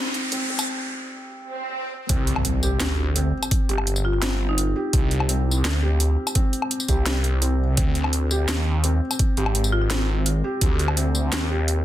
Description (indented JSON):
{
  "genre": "half-time drum and bass",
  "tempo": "169 BPM",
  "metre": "4/4",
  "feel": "half-time",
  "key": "unclear",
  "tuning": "A4 = 440 Hz",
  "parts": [
    { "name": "felt-muted upright piano", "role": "arpeggios", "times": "0.0-11.8 s", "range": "C4 to G4", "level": "-29 LUFS", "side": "equal", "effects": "ping-pong delay" },
    { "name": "riser, swell and impact", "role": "sound effects", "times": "0.0-3.5 s", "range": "none", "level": "-29 LUFS", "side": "right 1 dB", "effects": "none" },
    { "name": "drum and bass drum kit", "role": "drums", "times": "0.1-11.8 s", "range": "hi-hat, snare drum, tambourine, woodblock", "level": "-26 LUFS", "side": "equal", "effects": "overdrive" },
    { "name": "phased detuned saw bass", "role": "bass", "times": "2.1-11.8 s", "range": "G1 to Eb2", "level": "-22 LUFS", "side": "equal", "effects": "phaser" },
    { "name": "electronic kick drum", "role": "drums", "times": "2.1-10.7 s", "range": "none", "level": "-21 LUFS", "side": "equal", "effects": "overdrive" },
    { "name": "marimba with medium mallets", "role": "melody", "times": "4.0-4.8, 9.7-9.9 s", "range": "Eb4 to F4", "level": "-32 LUFS", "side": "left 1 dB", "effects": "dub echo" }
  ],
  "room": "light reverb",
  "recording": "dense, heavily limited modern master, high-pass filter",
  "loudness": "-20 LUFS",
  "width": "side -13 dB against mid",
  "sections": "0.0-2.1 A section; 2.1-11.8 B section",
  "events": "build-up 0.0-2.1; riser 0.0-0.7; filter sweep on felt piano 0.0-2.1; filter sweep 0.0-2.1; break 0.7-2.1; swell 1.4-2.1; drop 2.1-11.8; impact 2.1-3.5",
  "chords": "0.0 C5; 7.8 Abmaj7#11"
}